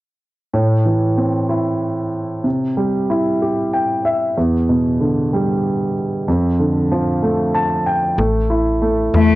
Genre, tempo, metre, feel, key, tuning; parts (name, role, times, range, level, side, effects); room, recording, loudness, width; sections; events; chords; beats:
pop; 63 BPM (dotted quarters); 6/8; straight; A minor; A4 = 440 Hz
warm grand piano; accompaniment; 0.5-9.4 s; E2 to A5; -16 LUFS; equal; cassette tape
slap-like FM bass; bass; 8.2-9.4 s; A1 to E2; -18 LUFS; equal
warm cello; melody; 9.2-9.4 s; A3; -12 LUFS; left 6 dB
moderate studio reverb, RT60 0.6 s; home recording on cassette; -15 LUFS; side -17 dB against mid
0.5-8.2 A section; 8.2-9.4 B section
grand piano fill 3.4-4.4, 7.2-8.2
0.5 Am; 2.5 C; 4.4 Em7; 6.3 Dm/F; 8.2 A5
| 0.54 1.50 | 2.45 3.41 | 4.36 5.32 | 6.27 7.23 | 8.18 9.13